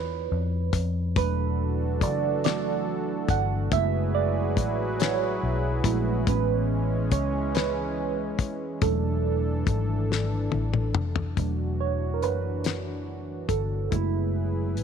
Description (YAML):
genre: slow six-eight R&B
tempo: 47 BPM (dotted quarters)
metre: 6/8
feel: straight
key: unclear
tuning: A4 = 440 Hz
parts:
  - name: reed electric piano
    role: accompaniment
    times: 0.0-14.8 s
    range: F#3 to F#5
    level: -29 LUFS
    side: right 14 dB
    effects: phaser
  - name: vintage muted fingered electric bass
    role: bass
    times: 0.0-14.8 s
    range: E1 to F2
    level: -28 LUFS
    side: left 2 dB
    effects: none
  - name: damped 70s drum kit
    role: drums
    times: 0.7-14.8 s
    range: hi-hat, kick drum, snare drum, toms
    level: -27 LUFS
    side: left 6 dB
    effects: none
  - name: warm analog pad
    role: sustained chords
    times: 1.2-14.8 s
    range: E3 to B4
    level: -32 LUFS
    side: left 2 dB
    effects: chorus
room: studio reverb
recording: 1960s-style stereo with parts hard left and right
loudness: -24 LUFS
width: side -7 dB against mid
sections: 0.0-11.4 A section; 11.4-14.8 B section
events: reed electric piano solo 0.0-11.4, 11.4-14.8; drum fill 10.1-11.4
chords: 0.0 Dm6; 1.2 E9sus4; 3.7 F#m11; 6.3 Amaj7; 8.8 E7sus4; 11.4 E9sus4; 13.9 F#m11